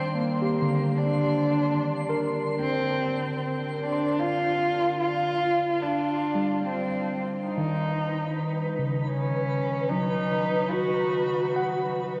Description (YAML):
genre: ambient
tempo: 74 BPM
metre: 3/4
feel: straight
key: unclear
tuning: A4 = 439 Hz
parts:
  - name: dark cello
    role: melody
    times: 0.0-11.9 s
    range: Bb3 to Gb4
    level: -28 LUFS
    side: equal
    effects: delay
  - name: tine electric piano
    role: arpeggios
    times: 0.0-12.2 s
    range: Db3 to C6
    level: -31 LUFS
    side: equal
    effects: delay
  - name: twinkling granular texture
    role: texture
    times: 0.0-12.2 s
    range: Cb5 to C6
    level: -37 LUFS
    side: equal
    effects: built-in reverb
room: wet huge ambient reverb, RT60 7.9 s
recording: worn, warbling old tape, cassette tape, warbly pitch drift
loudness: -26 LUFS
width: mono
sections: 0.0-12.2 A section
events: none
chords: 0.0 Ebmaj7; 2.6 G7sus4; 7.5 Db9sus4